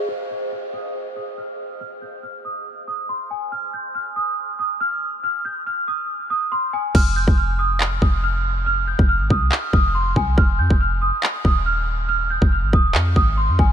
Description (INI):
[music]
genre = hip hop, trap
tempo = 140 BPM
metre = 4/4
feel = half-time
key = F minor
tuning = A4 = 438 Hz
[part]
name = celesta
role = melody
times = 0.0-13.7 s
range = Ab5 to G6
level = -22 LUFS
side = right 1 dB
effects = wide subtle chorus, low-pass filter
[part]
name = clean 808-style bass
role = bass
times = 6.9-13.7 s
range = Eb1 to F2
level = -21 LUFS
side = equal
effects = none
[part]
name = trap drum kit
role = drums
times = 6.9-13.7 s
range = crash cymbal, handclaps, kick drum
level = -19 LUFS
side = equal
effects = vintage 12-bit sampler grit
[sound]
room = light reverb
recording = none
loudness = -18 LUFS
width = side -10 dB against mid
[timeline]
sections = 0.1-6.9 A section; 6.9-13.7 B section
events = filter sweep on celesta 0.1-6.9; hi-hats muted 6.9-13.7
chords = 0.1 N.C.; 6.9 F7(no3)